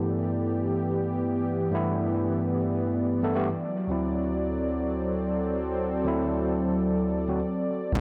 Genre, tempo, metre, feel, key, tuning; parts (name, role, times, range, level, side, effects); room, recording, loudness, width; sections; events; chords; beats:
organic downtempo; 111 BPM; 4/4; swing 55% on 16ths; D mixolydian; A4 = 442 Hz
overdriven tine electric piano; accompaniment; 0.0-7.4 s; D2 to A4; -36 LUFS; equal
warm analog pad; sustained chords; 0.0-8.0 s; E3 to D5; -35 LUFS; equal
upright bass; bass; 8.0 s; G2; -27 LUFS; equal; tube saturation
electronic kick drum; drums; 8.0 s; -27 LUFS; equal
shaker; drums; 8.0 s; -54 LUFS; equal
digital ambience; dry, gritty hardware recording; -27 LUFS; mono
0.0-8.0 A section
0.0 G6; 3.6 D7
0.38 0.92 | 1.46 2.00 2.54 3.08 | 3.63 4.17 4.71 5.25 | 5.79 6.33 6.87 7.41 | 7.95